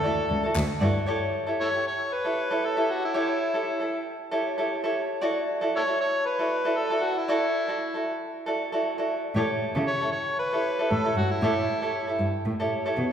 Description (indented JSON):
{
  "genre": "acoustic pop",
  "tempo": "116 BPM",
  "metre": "4/4",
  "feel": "swing 55% on 16ths",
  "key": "unclear",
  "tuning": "A4 = 442 Hz",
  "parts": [
    { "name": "overdriven harmonica", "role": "melody", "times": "0.0-12.3 s", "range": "E4 to C#5", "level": "-28 LUFS", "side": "left 1 dB", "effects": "none" },
    { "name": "tenor ukulele", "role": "accompaniment", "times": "0.0-13.1 s", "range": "E4 to D5", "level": "-27 LUFS", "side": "equal", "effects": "none" },
    { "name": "rich cello", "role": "bass", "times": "0.3-0.9, 9.3-13.0 s", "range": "C#2 to C#3", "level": "-28 LUFS", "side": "equal", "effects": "none" },
    { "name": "group handclap", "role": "percussion", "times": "0.6-0.7 s", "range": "none", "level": "-40 LUFS", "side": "left 3 dB", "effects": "none" }
  ],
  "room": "wet concert hall reverb, RT60 1.9 s",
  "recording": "recorded in a church or concert hall",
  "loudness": "-24 LUFS",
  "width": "side -8 dB against mid",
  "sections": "0.0-1.1 A section; 1.1-13.1 B section",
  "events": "none",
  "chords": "0.0 Dadd9; 1.1 A7; 5.2 Dadd9; 9.4 A7"
}